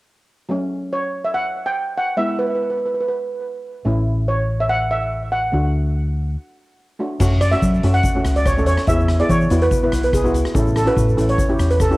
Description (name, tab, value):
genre	calypso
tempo	143 BPM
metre	4/4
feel	swing 53% on 16ths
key	unclear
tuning	A4 = 440 Hz
part	steel pan	accompaniment	0.5-12.0 s	F#3 to B4	-23 LUFS	equal	none
part	steel pan	melody	0.9-12.0 s	G#4 to G5	-20 LUFS	right 1 dB	cassette tape, tape echo
part	hollow-body short-scale fingered electric bass	bass	3.9-12.0 s	A1 to F#3	-19 LUFS	equal	none
part	street-band drum kit	drums	7.2-11.9 s	crash cymbal, hi-hat, kick drum, rim click	-22 LUFS	equal	cassette tape
part	tube shaker	percussion	7.2-12.0 s	none	-38 LUFS	left 6 dB	none
room	light reverb, small room ambience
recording	home recording on cassette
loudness	-16 LUFS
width	side -20 dB against mid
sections	0.5-7.2 A section; 7.2-12.0 B section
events	break 6.4-7.2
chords	0.5 F#m; 2.2 E; 3.9 A; 5.5 D; 7.2 F#m; 8.9 E; 10.5 A